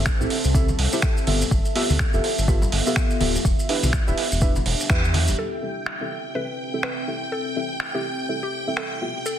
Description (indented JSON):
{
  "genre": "deep house",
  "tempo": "124 BPM",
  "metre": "4/4",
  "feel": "swing 59% on 16ths",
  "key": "C major",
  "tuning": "A4 = 441 Hz",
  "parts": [
    { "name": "deep mellow chord stab", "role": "stabs", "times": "0.0-9.2 s", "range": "B3 to E5", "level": "-28 LUFS", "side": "equal", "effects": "chorus, cassette tape, sidechain pumping, digital delay" },
    { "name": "round analog bass", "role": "bass", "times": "0.0-5.3 s", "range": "D1 to E2", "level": "-23 LUFS", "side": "equal", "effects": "sidechain pumping" },
    { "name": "deep dark ambient pad", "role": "texture", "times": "0.0-9.4 s", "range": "B3 to E5", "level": "-31 LUFS", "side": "equal", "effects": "chorus, built-in reverb, sidechain pumping" },
    { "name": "dusty soul sampler-style drum kit", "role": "drums", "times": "0.1-8.9 s", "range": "finger snaps, hi-hat", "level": "-27 LUFS", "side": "right 2 dB", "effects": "overdrive, low-pass filter on hats, soft clipping on snare, low-pass filter on snare" },
    { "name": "electronic kick drum", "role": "drums", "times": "0.1-5.0 s", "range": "none", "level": "-22 LUFS", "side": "equal", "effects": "overdrive" },
    { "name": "maracas", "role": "percussion", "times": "0.1-5.4, 9.3-9.4 s", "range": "none", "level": "-34 LUFS", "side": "right 1 dB", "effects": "none" },
    { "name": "congas", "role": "percussion", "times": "0.7-5.4 s", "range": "none", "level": "-32 LUFS", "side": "left 3 dB", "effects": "none" },
    { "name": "mallet-like synth pluck", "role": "melody", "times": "5.4-9.4 s", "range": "G4 to B4", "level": "-32 LUFS", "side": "left 1 dB", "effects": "chorus, dub echo" },
    { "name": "string machine, violins", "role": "texture", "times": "5.4-9.4 s", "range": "G5", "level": "-31 LUFS", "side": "equal", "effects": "ensemble chorus, sidechain pumping" }
  ],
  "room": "light reverb",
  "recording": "dense, heavily limited modern master, vinyl crackle",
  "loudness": "-20 LUFS",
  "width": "side -10 dB against mid",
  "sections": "0.0-5.4 A section; 5.4-9.4 B section",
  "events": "band accent 4.9",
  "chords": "0.0 C6; 1.3 G13; 3.4 Em7; 5.4 C6",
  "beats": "0.06 0.55 1.03 | 1.51 2.00 2.48 2.96 | 3.45 3.93 4.42 4.90 | 5.38 5.87 6.35 6.84 | 7.32 7.80 8.29 8.77 | 9.26"
}